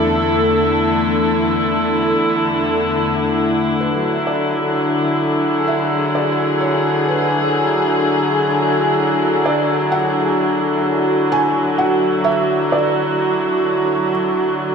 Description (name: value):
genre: ambient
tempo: 64 BPM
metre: 3/4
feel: straight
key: E mixolydian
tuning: A4 = 444 Hz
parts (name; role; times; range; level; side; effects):
- dark studio string section; sustained chords; 0.0-14.7 s; E2 to A4; -15 LUFS; equal; none
- felt-muted upright piano; melody; 3.8-14.1 s; B4 to G#5; -23 LUFS; right 2 dB; tape echo
room: wet concert hall reverb, RT60 2.2 s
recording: none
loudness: -15 LUFS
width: side -6 dB against mid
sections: 0.0-3.8 A section; 3.8-14.7 B section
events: fade-in on felt piano 3.8-14.7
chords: 0.0 Dsus2/E; 3.8 E9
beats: 0.08 | 1.02 1.96 2.90 | 3.83 4.77 5.71 | 6.64 7.58 8.52 | 9.46 10.39 11.33 | 12.27 13.21 14.14